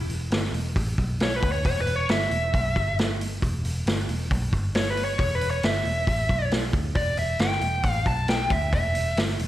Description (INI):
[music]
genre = blues rock power trio and southern rock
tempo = 136 BPM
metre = 4/4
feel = straight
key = unclear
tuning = A4 = 440 Hz
[part]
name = vintage muted picked electric bass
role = bass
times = 0.0-9.5 s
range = E1 to D2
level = -27 LUFS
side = equal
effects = none
[part]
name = vintage drum kit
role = drums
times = 0.1-9.5 s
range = hi-hat, kick drum, snare drum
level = -26 LUFS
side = equal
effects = none
[part]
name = bluesy overdriven lead guitar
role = melody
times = 1.2-9.2 s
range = B4 to A5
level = -26 LUFS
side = equal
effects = distortion, slapback echo
[sound]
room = moderate recital hall reverb, RT60 1.4 s, small room ambience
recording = big arena sound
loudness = -22 LUFS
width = side -14 dB against mid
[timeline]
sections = 0.0-9.5 A section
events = lead electric guitar solo 0.0-9.5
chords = 0.0 Emadd11; 1.0 Bsus2; 1.4 E5; 2.8 N.C.; 3.4 E5; 4.5 G; 5.2 Em6; 6.3 Bsus4; 6.7 Em7; 8.1 Gadd9/B; 8.5 E5